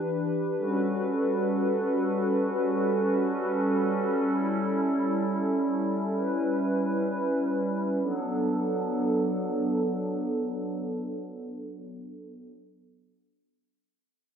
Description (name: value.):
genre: hip hop.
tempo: free time.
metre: none.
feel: none.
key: B minor.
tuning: A4 = 440 Hz.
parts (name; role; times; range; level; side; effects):
hollow soft pad; sustained chords; 0.0-12.5 s; E3 to B4; -26 LUFS; equal; chorus, low-pass filter.
room: moderate lush hall reverb, RT60 2.0 s.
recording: none.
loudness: -25 LUFS.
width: side -7 dB against mid.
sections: 0.0-8.0 A section; 8.0-11.7 B section.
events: filter sweep on analog synth pad 0.0-8.0.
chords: 0.0 Em7; 0.6 Gmaj9#11; 4.3 A7; 8.0 Bm7.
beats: free time.